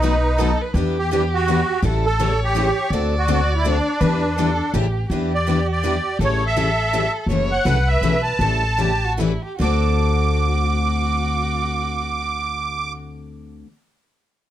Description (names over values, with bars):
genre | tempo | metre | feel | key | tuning
acoustic string swing (jazz manouche) | 141-165 BPM | 3/4 | swing 61% on 8ths | D mixolydian | A4 = 440 Hz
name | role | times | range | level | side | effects
musette accordion | melody | 0.0-12.9 s | D4 to D6 | -22 LUFS | right 2 dB | plate reverb
warm violin | second line | 0.0-12.9 s | E4 to D5 | -27 LUFS | right 2 dB | none
picked old ladder-braced acoustic guitar | accompaniment | 0.0-13.7 s | B2 to B4 | -29 LUFS | right 4 dB | none
picked steel-string acoustic guitar | accompaniment | 0.0-13.7 s | B2 to A4 | -25 LUFS | left 6 dB | none
upright bass | bass | 0.0-13.6 s | F#1 to E2 | -22 LUFS | equal | none
room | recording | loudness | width
light reverb | none | -17 LUFS | side -12 dB against mid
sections
0.0-5.1 A section; 5.1-9.6 B section; 9.6-12.2 C section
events
slowing down 7.3-9.6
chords
0.0 B7; 0.8 Em7; 1.8 A7; 2.9 D7; 4.0 Em7; 4.7 A7; 5.1 Em7; 6.2 A7; 7.3 F#m7; 8.4 A7; 9.6 D7